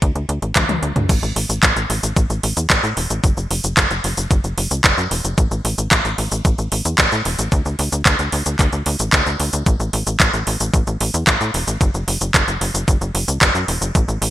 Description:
italo disco; 112 BPM; 4/4; straight; A4 = 440 Hz
tight sequencer bass; bass; 0.0-14.3 s; E1 to A2; -21 LUFS; equal
electronic kick drum; drums; 0.0-14.1 s; -18 LUFS; equal
house drum kit; drums; 0.0-14.3 s; cabasa, crash cymbal, handclaps, hi-hat, toms; -18 LUFS; equal; gated reverb
light reverb; bright 1980s-style digital production; -15 LUFS; side -14 dB against mid
0.0-1.1 A section; 1.1-14.3 B section
drum fill 0.6-1.1

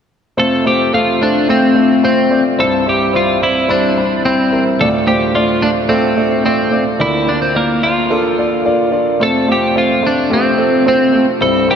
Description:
pop; 109 BPM; 4/4; straight; F major; A4 = 440 Hz
twelve-string electric guitar; melody; 0.4-11.8 s; Bb3 to A4; -14 LUFS; equal
clear grand piano; accompaniment; 0.4-11.8 s; C2 to D5; -14 LUFS; equal
wet huge ambient reverb, RT60 4.6 s; dreamy mix soaked in reverb; -11 LUFS; side -7 dB against mid
0.4-11.8 A section
0.4 F; 2.6 C; 4.8 Dm; 7.0 Bb/D; 9.2 F

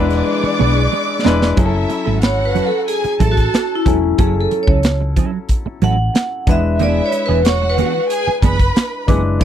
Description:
lush 1970s-style soul; 92 BPM; 4/4; straight; F# minor; A4 = 439 Hz
warm studio violin section; second line; 0.0-9.0 s; E4 to D6; -22 LUFS; right 1 dB
warm grand piano; accompaniment; 0.0-9.4 s; F#3 to B4; -22 LUFS; left 6 dB
phased string machine; sustained chords; 0.0-1.6 s; E3 to G#4; -26 LUFS; left 2 dB; ensemble chorus, phaser
clean electric guitar; riff; 0.0-9.4 s; E3 to B4; -20 LUFS; right 9 dB; analog chorus
hollow-body short-scale fingered electric bass; bass; 0.0-9.4 s; E1 to C#2; -18 LUFS; equal
celesta; texture; 0.0-9.4 s; F#5 to D6; -30 LUFS; right 1 dB
modern studio drum kit; drums; 0.1-9.4 s; hi-hat, kick drum, snare drum; -16 LUFS; equal
vibraphone with hard mallets; melody; 2.2-8.3 s; E4 to F#5; -18 LUFS; equal; slapback echo
little or no reverb; dry, close 1970s-style studio recording; -13 LUFS; side -10 dB against mid
0.0-1.6 A section; 1.6-9.4 B section
drum fill 0.3-1.6; vibraphone solo 1.6-9.4
0.0 E7; 1.6 F#m7; 6.5 E7

